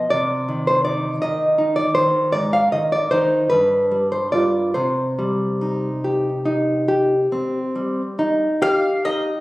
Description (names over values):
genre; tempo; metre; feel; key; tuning
romantic duo for mandolin and classical guitar; 46-54 BPM (dotted quarters); 12/8; rubato; C minor; A4 = 438 Hz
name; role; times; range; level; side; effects
nylon-string guitar; accompaniment; 0.0-9.4 s; G2 to F5; -17 LUFS; equal; none
mandolin; melody; 8.6-9.4 s; Eb5 to F5; -22 LUFS; left 1 dB; none
room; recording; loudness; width
moderate recital hall reverb, RT60 1.6 s; recorded on a phone in the room, club reverb, compression; -17 LUFS; side -18 dB against mid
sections
0.0-9.4 A section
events
none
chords
0.1 Cm; 2.3 Ab5; 3.5 G7; 4.8 Cm